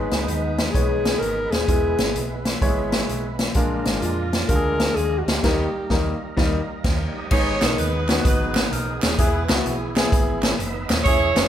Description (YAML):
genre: uptempo gospel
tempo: 128 BPM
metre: 4/4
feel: swing 66% on 8ths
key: G# minor from 7.3 s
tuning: A4 = 440 Hz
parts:
  - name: warm concert grand piano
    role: accompaniment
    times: 0.0-11.5 s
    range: G#2 to C#5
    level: -26 LUFS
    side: left 2 dB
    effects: none
  - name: overdriven tonewheel organ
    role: sustained chords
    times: 0.0-11.5 s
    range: G3 to G#5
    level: -32 LUFS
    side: right 4 dB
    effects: slow rotary speaker, chorus vibrato
  - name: hollow-body short-scale fingered electric bass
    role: bass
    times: 0.0-11.5 s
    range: D#1 to E#2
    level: -28 LUFS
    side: right 1 dB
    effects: none
  - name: swinging big-band drum kit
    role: drums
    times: 0.1-11.4 s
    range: crash cymbal, hi-hat, kick drum, snare drum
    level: -22 LUFS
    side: equal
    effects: none
  - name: breathy alto saxophone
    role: melody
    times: 0.3-6.2 s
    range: D#4 to A#4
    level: -25 LUFS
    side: left 2 dB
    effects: none
  - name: clear saxophone section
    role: melody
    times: 7.3-11.5 s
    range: B3 to C#5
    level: -24 LUFS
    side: right 2 dB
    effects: none
  - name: group handclap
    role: percussion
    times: 7.6-11.4 s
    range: none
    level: -33 LUFS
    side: right 4 dB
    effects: none
room: light reverb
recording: band playing live in one room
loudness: -19 LUFS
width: side -10 dB against mid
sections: 0.0-7.3 A section; 7.3-11.5 B section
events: band accent 5.4-7.3; tonewheel organ fill 10.1-11.1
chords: 0.0 G#m; 1.7 E; 3.6 A#7; 5.4 D#; 7.3 G#m; 9.2 E